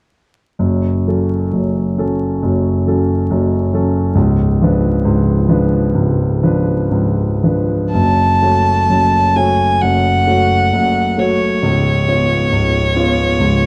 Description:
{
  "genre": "classical, romantic duo for violin and grand piano",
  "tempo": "57-70 BPM",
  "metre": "4/4",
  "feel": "rubato",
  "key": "F# minor",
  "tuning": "A4 = 439 Hz",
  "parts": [
    { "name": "warm concert grand piano", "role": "accompaniment", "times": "0.6-13.7 s", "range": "C#1 to C#5", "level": "-16 LUFS", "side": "equal", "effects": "none" },
    { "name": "rich violin", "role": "melody", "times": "7.9-13.7 s", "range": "C#5 to A5", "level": "-17 LUFS", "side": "equal", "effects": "none" }
  ],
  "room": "moderate scoring stage reverb, RT60 1.6 s",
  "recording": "close, detailed microphones, vinyl crackle",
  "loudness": "-15 LUFS",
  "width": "mono",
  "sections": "0.6-7.9 A section; 7.9-13.7 B section",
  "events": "none",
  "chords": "0.6 F#m; 4.1 C#7b9; 7.9 F#m; 11.6 C#7"
}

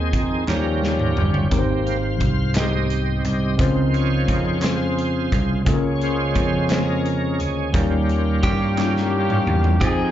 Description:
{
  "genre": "slow gospel",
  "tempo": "58 BPM (dotted quarters)",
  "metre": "6/8",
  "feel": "straight",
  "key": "unclear",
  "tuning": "A4 = 440 Hz",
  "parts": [
    { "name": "mellow tine electric piano", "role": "accompaniment", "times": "0.0-10.1 s", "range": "Ab2 to G5", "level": "-24 LUFS", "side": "left 2 dB", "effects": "medium stereo tremolo, slapback echo" },
    { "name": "bright tonewheel organ", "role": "sustained chords", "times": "0.0-10.1 s", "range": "Db3 to G5", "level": "-26 LUFS", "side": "right 2 dB", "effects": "slow rotary speaker, overdrive, chorus vibrato" },
    { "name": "vintage slap bass", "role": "bass", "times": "0.0-10.1 s", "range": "G1 to G2", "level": "-22 LUFS", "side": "equal", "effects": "none" },
    { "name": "modern studio drum kit", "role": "drums", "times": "0.1-10.0 s", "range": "hi-hat, kick drum, snare drum, toms", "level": "-24 LUFS", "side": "equal", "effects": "none" },
    { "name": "group handclap", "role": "percussion", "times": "0.5-9.1 s", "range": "none", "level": "-35 LUFS", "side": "right 2 dB", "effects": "none" },
    { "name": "clean electric guitar", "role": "melody", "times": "8.4-10.1 s", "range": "G4 to Ab4", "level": "-28 LUFS", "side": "right 3 dB", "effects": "slapback echo" },
    { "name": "clear horn section", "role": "melody", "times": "8.4-10.1 s", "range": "Bb3 to Ab4", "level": "-26 LUFS", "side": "left 3 dB", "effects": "slapback echo" }
  ],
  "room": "light reverb, small room ambience",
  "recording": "live gig heard through the venue's PA, club reverb, nothing above 7.5 kHz",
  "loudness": "-18 LUFS",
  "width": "side -11 dB against mid",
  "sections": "0.0-9.8 A section",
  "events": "tonewheel organ solo 0.0-9.8; drum fill 0.5-1.5, 8.8-9.8",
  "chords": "0.5 Eb7; 1.5 Abmaj7; 3.6 Dbmaj7; 5.7 Bbm7/Db; 7.7 Eb7"
}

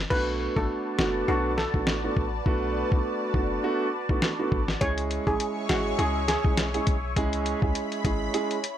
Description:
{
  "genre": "dancehall",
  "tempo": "102 BPM",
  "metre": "4/4",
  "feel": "swing 56% on 16ths",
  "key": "B dorian",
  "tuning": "A4 = 440 Hz",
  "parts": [
    { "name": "clean 808-style bass", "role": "bass", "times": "0.0-8.3 s", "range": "F#1 to C#2", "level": "-31 LUFS", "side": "left 1 dB", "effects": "none" },
    { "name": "steel pan", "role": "melody", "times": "0.1-6.4 s", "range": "F#4 to C#5", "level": "-29 LUFS", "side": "equal", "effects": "digital delay" },
    { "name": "dark concert grand piano", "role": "accompaniment", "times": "0.1-8.6 s", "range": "G#3 to G#4", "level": "-29 LUFS", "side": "right 3 dB", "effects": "none" },
    { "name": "lush unison pad", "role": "sustained chords", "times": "0.5-8.8 s", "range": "F#4 to C#6", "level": "-33 LUFS", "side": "left 1 dB", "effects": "chorus, phaser, sidechain pumping" },
    { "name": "lo-fi sampler-style drum kit", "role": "drums", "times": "0.1-8.8 s", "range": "crash cymbal, hi-hat, kick drum, snare drum", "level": "-28 LUFS", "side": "left 1 dB", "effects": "none" }
  ],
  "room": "little or no reverb",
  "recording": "none",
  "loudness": "-24 LUFS",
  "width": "side -10 dB against mid",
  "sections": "0.1-8.8 A section",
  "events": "none",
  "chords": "0.1 Bm7; 4.8 C#m"
}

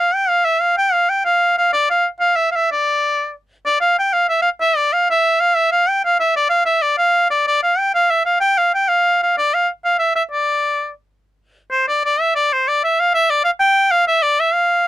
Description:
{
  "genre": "medieval",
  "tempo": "127 BPM (dotted quarters)",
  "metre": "6/8",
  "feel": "straight",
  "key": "unclear",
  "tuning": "A4 = 441 Hz",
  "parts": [
    { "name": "edgy shawm", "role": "solo", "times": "0.0-14.9 s", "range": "C5 to G5", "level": "-14 LUFS", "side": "equal", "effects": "none" }
  ],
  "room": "light reverb",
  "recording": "dry, close 1970s-style studio recording, faint mains hum",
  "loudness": "-14 LUFS",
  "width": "side -14 dB against mid",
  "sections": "0.0-3.7 A section; 3.7-11.2 A section; 11.2-14.9 B section",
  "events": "none",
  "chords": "none"
}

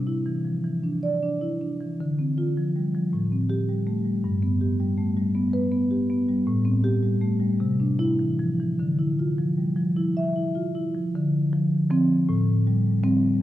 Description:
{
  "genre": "classical, contemporary piece for solo marimba",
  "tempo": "50-54 BPM (dotted quarters)",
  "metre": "6/8",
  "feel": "rubato",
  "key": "D dorian",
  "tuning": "A4 = 441 Hz",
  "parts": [
    { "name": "marimba with soft mallets", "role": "solo", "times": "0.0-13.4 s", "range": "G2 to E5", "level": "-22 LUFS", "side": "equal", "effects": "none" }
  ],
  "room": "wet concert hall reverb, RT60 2.3 s",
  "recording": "dark, warm production",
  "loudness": "-22 LUFS",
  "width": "side -14 dB against mid",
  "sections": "0.0-11.1 A section; 11.1-13.4 B section",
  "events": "none",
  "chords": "0.0 Cadd9; 2.0 Dm7; 3.1 Am7; 4.2 G; 6.5 Am7; 7.6 Cadd9; 8.8 Dmadd9; 11.1 Dm7; 12.3 Am7"
}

